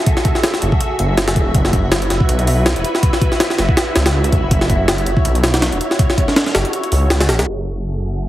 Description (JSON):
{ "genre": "drum and bass, jungle", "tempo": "162 BPM", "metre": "4/4", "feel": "swing 55% on 16ths", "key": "unclear", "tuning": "A4 = 440 Hz", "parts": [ { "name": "soft string machine", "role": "sustained chords", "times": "0.0-8.3 s", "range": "E4 to E5", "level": "-22 LUFS", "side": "equal", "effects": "phaser, ensemble chorus, vintage 12-bit sampler grit" }, { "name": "jungle sampler-style drum kit", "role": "drums", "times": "0.1-7.5 s", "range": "hi-hat, kick drum, snare drum", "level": "-15 LUFS", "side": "equal", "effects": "none" }, { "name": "detuned saw bass", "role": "bass", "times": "0.6-8.3 s", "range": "E1 to C#2", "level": "-17 LUFS", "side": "equal", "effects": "none" } ], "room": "light reverb", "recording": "heavily compressed radio sound, vinyl crackle, low-pass filter", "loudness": "-13 LUFS", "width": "side -14 dB against mid", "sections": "0.0-7.5 A section", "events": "none", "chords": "0.0 F#m9; 1.5 Esus2; 7.5 F#m9", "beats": "| 0.07 0.44 0.81 1.18 | 1.55 1.92 2.29 2.66 | 3.03 3.40 3.77 4.14 | 4.51 4.88 5.25 5.62 | 5.99 6.36 6.73 7.10 | 7.47 7.84 8.21" }